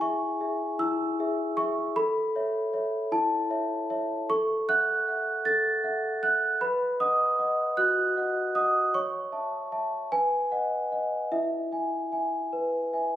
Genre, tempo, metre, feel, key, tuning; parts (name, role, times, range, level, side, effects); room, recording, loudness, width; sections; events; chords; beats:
classical, lullaby for celesta; 51 BPM (dotted quarters); 6/8; straight; A4 = 439 Hz
large celesta; solo; 0.0-13.2 s; E4 to A6; -25 LUFS; equal
moderate recital hall reverb, RT60 1.8 s; recorded on a phone in the room, club reverb, compression; -25 LUFS; side -12 dB against mid
0.0-13.2 A section
0.0 C#m/E; 2.0 A; 4.3 F#m7/A; 6.6 B; 8.9 A/C#; 10.1 B; 11.3 E
0.79 | 1.96 3.12 | 4.29 5.46 | 6.61 7.77 | 8.94 10.11 | 11.31 12.53